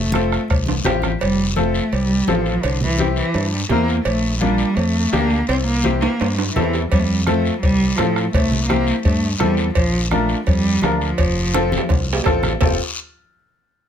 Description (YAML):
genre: latin, cumbia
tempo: 168 BPM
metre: 4/4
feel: straight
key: F major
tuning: A4 = 441 Hz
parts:
  - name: warm cello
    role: melody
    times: 0.0-12.2 s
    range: D3 to C4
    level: -21 LUFS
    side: right 1 dB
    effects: none
  - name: modern bright fingered electric bass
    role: bass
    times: 0.0-12.8 s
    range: F1 to A2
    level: -22 LUFS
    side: right 1 dB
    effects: none
  - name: bright upright piano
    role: accompaniment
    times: 0.1-12.8 s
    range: Bb3 to Bb4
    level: -21 LUFS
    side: left 2 dB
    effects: none
  - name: bombo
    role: percussion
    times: 0.1-1.2, 6.9-12.7 s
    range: none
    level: -21 LUFS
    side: equal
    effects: none
  - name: congas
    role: percussion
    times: 0.1-12.7 s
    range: none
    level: -26 LUFS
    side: left 3 dB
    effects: none
  - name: cowbell and timbales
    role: percussion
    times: 0.2-12.7 s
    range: none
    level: -26 LUFS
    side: right 4 dB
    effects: none
  - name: guiro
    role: percussion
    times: 0.2-12.7 s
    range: none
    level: -30 LUFS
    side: left 5 dB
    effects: none
room: light reverb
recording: none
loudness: -16 LUFS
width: side -8 dB against mid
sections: 0.0-1.2 A section; 1.2-12.6 A section; 12.6-13.9 B section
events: drum fill 0.7-1.2, 6.0-6.9, 11.5-12.6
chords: 0.0 F; 2.6 C7; 4.1 Bb; 5.5 C7; 6.9 F; 8.3 C7; 9.8 Bb; 11.2 F